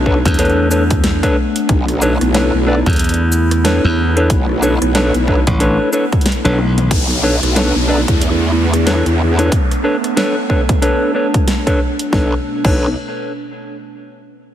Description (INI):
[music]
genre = glitch hop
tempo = 92 BPM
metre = 4/4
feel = swing 59% on 16ths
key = B minor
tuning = A4 = 439 Hz
[part]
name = warbly tape-like pad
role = sustained chords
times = 0.0-12.4 s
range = B2 to E4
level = -21 LUFS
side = equal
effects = chorus, built-in reverb, vintage 12-bit sampler grit, sidechain pumping
[part]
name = growl bass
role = bass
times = 0.0-12.9 s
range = B1 to E2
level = -16 LUFS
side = equal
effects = chorus
[part]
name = mellow electric guitar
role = stabs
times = 0.1-12.9 s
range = D4 to D5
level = -18 LUFS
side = equal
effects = sidechain pumping, low-pass filter, digital delay
[part]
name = electronic kick drum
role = drums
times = 0.1-12.8 s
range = none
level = -16 LUFS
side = equal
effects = small room ambience
[part]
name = glassy slap bass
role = bass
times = 0.3-6.9 s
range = A1 to E2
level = -15 LUFS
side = equal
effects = none
[part]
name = dubstep drum kit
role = drums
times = 0.3-12.8 s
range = crash cymbal, hi-hat, rim click, shaker, snare drum, toms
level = -23 LUFS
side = equal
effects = small room ambience
[part]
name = downlifter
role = sound effects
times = 6.9-12.1 s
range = none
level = -24 LUFS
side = left 1 dB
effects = none
[sound]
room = light reverb, digital ambience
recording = heavily compressed radio sound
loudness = -12 LUFS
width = side -11 dB against mid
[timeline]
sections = 0.0-6.9 A section; 6.9-12.1 B section; 12.1-14.5 C section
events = drop 0.0-6.9; kick drops out 6.3-6.9; drum fill 6.6-6.9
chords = 0.0 Bm9